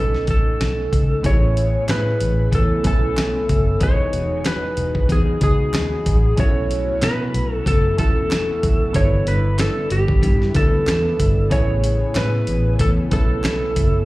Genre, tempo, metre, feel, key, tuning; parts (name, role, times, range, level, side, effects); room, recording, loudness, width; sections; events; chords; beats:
indie pop, bedroom pop; 94 BPM; 4/4; swing 55% on 16ths; A lydian; A4 = 440 Hz
electric slide guitar; melody; 0.0-14.1 s; G4 to C#5; -23 LUFS; equal; wide subtle chorus
electric guitar through a small old amp; accompaniment; 0.0-14.1 s; B2 to C#5; -30 LUFS; left 2 dB; lush chorus, warbly pitch drift, slapback echo
warm upright piano; accompaniment; 0.0-14.1 s; A3 to G#5; -31 LUFS; right 1 dB; cassette tape, slapback echo
vintage muted fingered electric bass; bass; 0.0-14.0 s; E1 to B2; -20 LUFS; equal
dusty soul sampler-style drum kit; drums; 0.1-13.9 s; hi-hat, kick drum, snare drum; -20 LUFS; equal
string machine, cellos; sustained chords; 1.2-14.1 s; C#3 to G#5; -32 LUFS; equal
group handclap; percussion; 1.9-13.6 s; -37 LUFS; right 1 dB
digital ambience; live gig heard through the venue's PA, club reverb; -16 LUFS; side -18 dB against mid
0.0-1.2 A section; 1.2-14.1 B section
0.0 B7; 1.2 Amaj9; 3.8 Emaj9; 6.4 B7sus4; 8.9 G6; 11.5 Amaj9
0.60 | 1.24 1.89 2.53 3.17 | 3.81 4.45 5.10 5.74 | 6.38 7.02 7.66 8.31 | 8.95 9.59 10.23 10.87 | 11.52 12.16 12.80 13.44